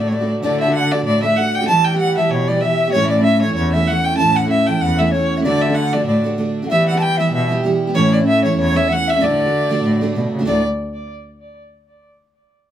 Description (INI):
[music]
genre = celtic folk, Celtic reel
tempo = 191 BPM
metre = 4/4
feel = swing 55% on 8ths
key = D major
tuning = A4 = 440 Hz
[part]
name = clear violin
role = melody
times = 0.0-10.6 s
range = C#5 to A5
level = -19 LUFS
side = right 2 dB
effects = tape echo
[part]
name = bright wooden flute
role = second line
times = 0.0-10.6 s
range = C#5 to A5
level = -23 LUFS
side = left 7 dB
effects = none
[part]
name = picked steel-string acoustic guitar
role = accompaniment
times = 0.0-10.6 s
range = D2 to G4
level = -19 LUFS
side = right 3 dB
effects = none
[part]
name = dark cello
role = bass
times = 0.0-10.6 s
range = D2 to E3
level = -20 LUFS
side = left 1 dB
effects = none
[sound]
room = moderate studio reverb, RT60 0.5 s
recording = none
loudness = -14 LUFS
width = side -10 dB against mid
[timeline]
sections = 0.4-10.5 A section; 10.5-11.7 B section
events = none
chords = 0.4 D; 1.7 Em; 2.9 A; 5.4 D; 6.7 Em; 8.0 A; 9.2 D; 10.5 D5